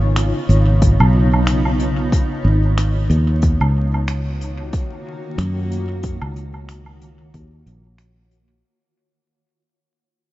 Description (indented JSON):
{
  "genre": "ambient dub",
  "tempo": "92 BPM",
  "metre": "4/4",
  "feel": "swing 56% on 16ths",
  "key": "Eb minor",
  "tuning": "A4 = 439 Hz",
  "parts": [
    { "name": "granular cloud pad", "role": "sustained chords", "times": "0.0-8.6 s", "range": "Db3 to Db5", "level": "-24 LUFS", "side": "equal", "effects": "built-in reverb" },
    { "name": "fingered electric bass", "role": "bass", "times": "0.0-8.6 s", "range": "Ab1 to Gb2", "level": "-16 LUFS", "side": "equal", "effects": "none" },
    { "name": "jazz brush drum kit", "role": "drums", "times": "0.2-8.5 s", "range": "finger snaps, hi-hat, woodblock", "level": "-28 LUFS", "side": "right 1 dB", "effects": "dub echo" },
    { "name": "electronic kick drum", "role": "drums", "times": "0.8-7.5 s", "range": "none", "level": "-18 LUFS", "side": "equal", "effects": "overdrive" }
  ],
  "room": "small room ambience",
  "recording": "vinyl crackle, nothing above 7.7 kHz",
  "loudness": "-15 LUFS",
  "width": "side -16 dB against mid",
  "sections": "0.0-8.6 A section",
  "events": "fade-out 1.7-8.6",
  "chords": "0.0 Db9; 3.4 Ebm7"
}